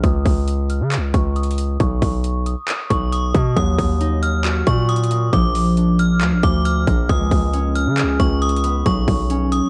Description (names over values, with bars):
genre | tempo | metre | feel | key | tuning
hip hop, trap | 136 BPM | 4/4 | half-time | unclear | A4 = 440 Hz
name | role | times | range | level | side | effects
metallic FM bell | melody | 0.0-9.7 s | Db6 to F6 | -27 LUFS | equal | chorus, low-pass filter, cassette tape
distorted 808-style bass | bass | 0.0-9.6 s | Bb1 to Db3 | -21 LUFS | equal | distortion
trap drum kit | drums | 0.0-9.6 s | handclaps, hi-hat, kick drum | -24 LUFS | equal | overdrive, vintage 12-bit sampler grit, cassette tape
concert harp | accompaniment | 3.6-9.7 s | F3 to F5 | -23 LUFS | equal | low-pass filter, cassette tape
room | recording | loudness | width
digital ambience | home recording on cassette | -18 LUFS | mono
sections
0.0-9.7 A section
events
filter sweep 0.0-3.6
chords
0.0 Db; 1.8 Badd9; 3.6 Ebmadd9; 5.3 Bb; 7.1 Db7; 8.9 Badd9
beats
| 0.04 0.48 0.92 1.36 | 1.80 2.24 2.68 3.12 | 3.56 4.01 4.45 4.89 | 5.33 5.77 6.21 6.65 | 7.09 7.54 7.98 8.42 | 8.86 9.30